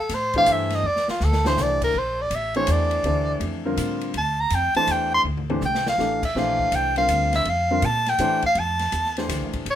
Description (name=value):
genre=modal jazz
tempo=163 BPM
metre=3/4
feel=swing 65% on 8ths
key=Bb lydian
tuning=A4 = 439 Hz
part: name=warm soprano saxophone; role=melody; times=0.0-9.8 s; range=F4 to C6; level=-21 LUFS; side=equal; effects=none
part: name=upright bass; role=bass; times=0.1-9.8 s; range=A1 to Bb2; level=-27 LUFS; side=equal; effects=none
part: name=open jazz drum kit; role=drums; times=0.1-9.8 s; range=crash cymbal, hi-hat, kick drum, ride cymbal, snare drum, toms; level=-32 LUFS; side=left 2 dB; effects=none
part: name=warm grand piano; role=accompaniment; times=0.4-9.6 s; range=D3 to C5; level=-26 LUFS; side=left 1 dB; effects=none
room=light reverb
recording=minimal, uncompressed stereo recording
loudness=-20 LUFS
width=side -10 dB against mid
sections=0.0-1.9 A section; 1.9-9.8 A section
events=soprano saxophone solo 0.0-9.8; drum fill 0.8-1.6, 5.3-6.0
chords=0.0 Bbmaj9 (rootless); 1.9 Bbmaj9